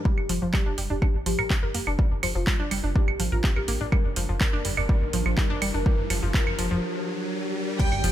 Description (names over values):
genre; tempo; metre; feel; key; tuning
melodic techno; 124 BPM; 4/4; straight; G minor; A4 = 441 Hz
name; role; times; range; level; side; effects
analog pluck; arpeggios; 0.0-8.1 s; F3 to Bb4; -31 LUFS; equal; chorus, sidechain pumping, digital delay
swell, riser and impact; sound effects; 0.0-8.1 s; none; -35 LUFS; equal; none
soft octave-layered synth lead; melody; 0.1-8.1 s; F4 to Bb4; -35 LUFS; left 1 dB; chorus, phaser, sidechain pumping, tape echo
dark analog pad; sustained chords; 0.1-8.1 s; D4 to Bb4; -39 LUFS; left 2 dB; chorus, sidechain pumping
electronic kick drum; drums; 0.1-7.9 s; none; -23 LUFS; equal; overdrive
plucky analog bass; bass; 0.2-8.1 s; G1 to Bb1; -29 LUFS; equal; sidechain pumping
techno drum kit; drums; 0.2-8.1 s; claves, crash cymbal, handclaps, hi-hat; -30 LUFS; right 3 dB; sidechain pumping on perc, low-pass filter on perc, sidechain pumping on hats, low-pass filter on hats, low-pass filter on snare, sidechain pumping on cymbals, low-pass filter on cymbals
clear chamber violin section; second line; 7.8-8.1 s; G5; -28 LUFS; right 2 dB; sidechain pumping
maracas; percussion; 7.8-8.0 s; none; -45 LUFS; left 6 dB; none
room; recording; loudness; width
little or no reverb; none; -22 LUFS; side -12 dB against mid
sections
0.1-7.8 A section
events
build-up 0.1-7.8; riser 0.1-7.8; break 6.8-7.8; impact 7.8-8.1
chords
0.1 Gm